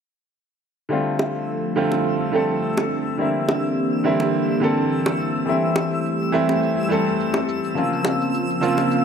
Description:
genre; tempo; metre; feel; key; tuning
sunset chillout; 105 BPM; 4/4; swing 55% on 16ths; F major; A4 = 443 Hz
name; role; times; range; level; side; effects
bright baby grand piano; accompaniment; 0.9-9.0 s; Db3 to A4; -22 LUFS; moving between left 2 dB and right 4 dB; auto-pan, low-pass filter, ping-pong delay
airy breathy pad; sustained chords; 1.3-9.0 s; Db3 to A4; -23 LUFS; left 1 dB; chorus
shaker; drums; 0.9-9.0 s; none; -49 LUFS; right 4 dB; none
twinkling granular texture; texture; 1.5-9.0 s; E6; -30 LUFS; left 2 dB; built-in reverb
bongos; percussion; 1.2-8.9 s; none; -25 LUFS; right 1 dB; none
room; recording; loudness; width
moderate lush hall reverb, RT60 1.7 s, small room ambience; none; -19 LUFS; side -7 dB against mid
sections
0.9-9.0 A section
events
none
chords
0.9 F6; 3.2 C9; 5.5 Am7; 7.8 Bbmadd9

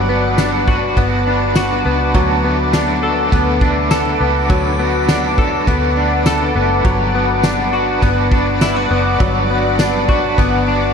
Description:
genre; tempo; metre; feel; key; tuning
dream pop; 102 BPM; 4/4; straight; unclear; A4 = 440 Hz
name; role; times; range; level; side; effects
raw garage guitar; accompaniment; 0.0-10.9 s; D3 to B4; -22 LUFS; right 5 dB; overdrive, tremolo, wide subtle chorus
shimmering ambient pad; sustained chords; 0.0-10.9 s; B4 to D6; -19 LUFS; left 1 dB; chorus, built-in reverb
direct-recorded clean electric guitar; arpeggios; 0.0-10.9 s; F#3 to A4; -18 LUFS; left 4 dB; analog chorus, digital delay
vintage muted fingered electric bass; bass; 0.0-10.9 s; F#1 to D2; -20 LUFS; equal; none
loose indie drum kit; drums; 0.4-10.5 s; kick drum, ride cymbal, snare drum, tambourine; -19 LUFS; equal; none
drifting glass-harmonics texture; texture; 4.3-5.2 s; B5; -41 LUFS; equal; none
room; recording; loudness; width
light reverb, small room ambience; none; -13 LUFS; side -6 dB against mid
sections
0.0-10.9 A section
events
none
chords
0.0 Gmaj7; 2.1 D6; 6.9 Gmaj7

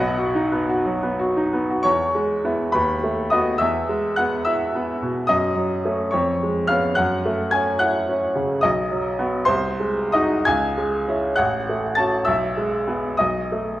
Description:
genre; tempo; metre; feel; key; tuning
classical, romantic character piece for solo piano; 57-74 BPM (dotted quarters); 6/8; rubato; E major; A4 = 440 Hz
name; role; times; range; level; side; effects
bright baby grand piano; solo; 0.0-13.8 s; A1 to A6; -19 LUFS; equal; none
room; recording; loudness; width
wet recital hall reverb, RT60 1.7 s; worn, warbling old tape, cassette tape, warbly pitch drift; -19 LUFS; side -15 dB against mid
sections
0.0-1.8 A section; 1.8-13.8 B section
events
none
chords
0.0 B; 1.8 E; 2.7 B7/D#; 3.6 E; 5.3 F#m; 6.1 C#7/E#; 7.0 F#m7; 8.6 B; 9.5 G#7/B#; 10.5 C#m; 11.4 F#m/A; 12.3 E/B; 13.2 B7

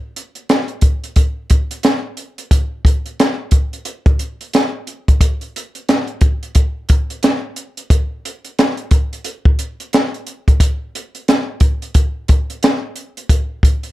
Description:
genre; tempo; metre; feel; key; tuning
hip hop; 89 BPM; 4/4; swing 61% on 16ths; none; none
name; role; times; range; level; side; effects
compact cocktail drum kit; drums; 0.2-13.9 s; hi-hat, kick drum, snare drum; -13 LUFS; equal; none
room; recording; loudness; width
light reverb; none; -14 LUFS; side -16 dB against mid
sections
0.0-5.2 A section; 5.2-13.9 A section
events
none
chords
none

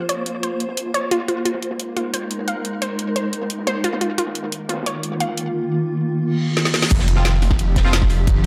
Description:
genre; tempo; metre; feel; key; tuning
dark technical drum and bass; 176 BPM; 4/4; straight; F minor; A4 = 440 Hz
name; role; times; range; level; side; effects
swarming drone; sustained chords; 0.0-8.5 s; Eb3 to C5; -26 LUFS; equal; built-in reverb, sidechain pumping
unison pluck; arpeggios; 0.1-5.3 s; F4 to F5; -27 LUFS; equal; sidechain pumping, digital delay
crunchy breakbeat drum kit; drums; 0.1-8.5 s; hi-hat, ride cymbal, snare drum; -36 LUFS; equal; high-pass filter on cymbals, low-pass filter on cymbals, high-pass filter on hats, low-pass filter on hats, high-pass filter on snare, low-pass filter on snare, high-pass filter on room, low-pass filter on room
drum and bass drum kit; drums; 0.1-8.3 s; crash cymbal, hi-hat, snare drum; -26 LUFS; equal; none
reverse cymbal; sound effects; 6.3-6.9 s; none; -29 LUFS; equal; none
detuned saw bass; bass; 6.9-8.5 s; F1 to G1; -20 LUFS; equal; chorus, overdrive, sidechain pumping
electronic kick drum; drums; 6.9-8.3 s; none; -20 LUFS; equal; none
band-passed chord stab; stabs; 7.2-7.9 s; F3 to F4; -30 LUFS; equal; phaser, digital delay
room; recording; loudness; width
moderate digital room reverb, RT60 1.1 s; dark, warm production; -21 LUFS; mono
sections
0.0-6.9 A section; 6.9-8.5 B section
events
reverse cymbal 6.3-6.9; drum fill 6.6-6.9; drop 6.9-8.5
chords
0.0 Bbm; 1.5 Ab; 4.2 Eb5; 6.9 F5

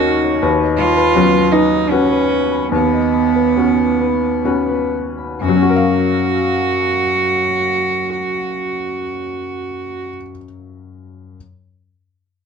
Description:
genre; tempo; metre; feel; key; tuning
neoclassical piano and strings; 60-86 BPM; 3/4; rubato; F# major; A4 = 440 Hz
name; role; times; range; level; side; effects
rich cello; second line; 0.0-10.1 s; B3 to F#4; -17 LUFS; right 6 dB; none
felt-muted upright piano; accompaniment; 0.0-11.4 s; D#2 to E#5; -18 LUFS; left 4 dB; none
concert harp; arpeggios; 0.0-5.5 s; D#4 to B5; -20 LUFS; left 6 dB; slapback echo
room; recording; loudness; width
light reverb; dark, warm production; -14 LUFS; side -6 dB against mid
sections
0.0-5.4 A section; 5.4-11.3 B section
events
slowing down 0.0-5.4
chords
0.4 Badd9/D#; 5.4 F#maj7

